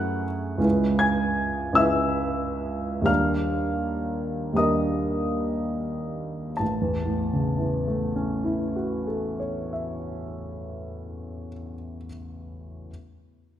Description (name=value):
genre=classical, impressionist solo piano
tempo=27-54 BPM (dotted quarters)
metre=6/8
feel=rubato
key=A lydian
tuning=A4 = 440 Hz
part: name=warm concert grand piano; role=solo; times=0.0-12.9 s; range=A1 to G#6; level=-24 LUFS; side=equal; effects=none
room=moderate scoring stage reverb, RT60 2.0 s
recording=none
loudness=-23 LUFS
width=side -10 dB against mid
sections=0.0-6.6 A section; 6.6-10.6 B section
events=slowing down 0.0-6.6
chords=0.0 F#m9; 0.6 C#m7; 3.1 D#maj7; 6.6 A6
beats=| 0.64 1.78 | 3.08 4.60 | 6.59 8.60